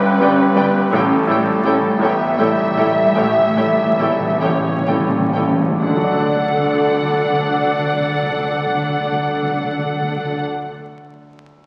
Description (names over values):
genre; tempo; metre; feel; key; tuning
classical, romantic movement for piano and orchestra; 41-57 BPM (dotted quarters); 12/8; rubato; D major; A4 = 440 Hz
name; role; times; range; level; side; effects
clear concert grand piano; melody; 0.0-11.7 s; G1 to D5; -22 LUFS; equal; none
muted symphonic violin section; second line; 0.0-10.4 s; A4 to E5; -24 LUFS; equal; none
muted studio cello section; bass; 0.0-10.4 s; G3 to D4; -25 LUFS; equal; none
muted symphonic violin section; melody; 0.2-10.4 s; F#5 to G5; -26 LUFS; equal; none
muted symphonic viola section; accompaniment; 0.2-10.4 s; A4 to D5; -26 LUFS; equal; none
muted studio double bass section; bass; 0.2-10.4 s; G1 to D2; -33 LUFS; equal; none
timpani; percussion; 0.9-10.5 s; A2 to D3; -27 LUFS; equal; none
room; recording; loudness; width
wet scoring stage reverb, RT60 1.7 s; very old 78 rpm record, vinyl crackle; -17 LUFS; mono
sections
0.0-5.8 A section; 5.8-11.0 B section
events
slowing down 0.0-5.8; timpani fill 0.9-5.8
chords
0.0 G; 0.9 A7; 5.8 D